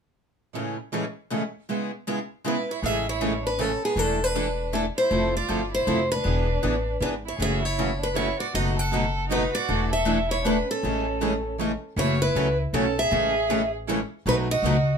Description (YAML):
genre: acoustic string swing (jazz manouche)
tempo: 158 BPM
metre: 3/4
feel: swing 63% on 8ths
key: A major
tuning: A4 = 441 Hz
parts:
  - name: picked steel-string acoustic guitar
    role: accompaniment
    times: 0.5-14.8 s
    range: A2 to B4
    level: -31 LUFS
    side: right 5 dB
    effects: none
  - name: picked steel-string acoustic guitar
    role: accompaniment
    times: 0.6-14.8 s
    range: A2 to A4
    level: -28 LUFS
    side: left 3 dB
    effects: none
  - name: picked steel-string acoustic guitar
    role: melody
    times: 2.5-15.0 s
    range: G#4 to F#5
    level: -26 LUFS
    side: equal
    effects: none
  - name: warm violin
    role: second line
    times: 2.5-15.0 s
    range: B3 to A4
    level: -30 LUFS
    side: right 7 dB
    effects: none
  - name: upright bass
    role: bass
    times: 2.8-14.9 s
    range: E1 to C#2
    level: -28 LUFS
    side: left 1 dB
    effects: none
room: moderate studio ambience, RT60 0.5 s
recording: minimal, uncompressed stereo recording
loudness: -22 LUFS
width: side -6 dB against mid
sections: 0.5-2.8 A section; 2.8-12.0 B section; 12.0-15.0 C section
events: none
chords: 0.5 Amaj7; 1.7 C#m7; 2.8 Amaj7; 4.0 E7sus4; 5.1 Fmaj7; 6.3 E7; 7.4 F#m7; 8.5 B7/F#; 9.7 E7sus4; 10.8 Amaj7; 12.0 F#m7; 13.1 Amaj7; 14.2 B7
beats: | 0.54 0.92 1.30 | 1.68 2.06 2.44 | 2.83 3.21 3.59 | 3.97 4.35 4.73 | 5.11 5.49 5.87 | 6.25 6.63 7.01 | 7.40 7.78 8.16 | 8.54 8.92 9.30 | 9.68 10.06 10.44 | 10.82 11.21 11.59 | 11.97 12.35 12.73 | 13.11 13.49 13.87 | 14.25 14.63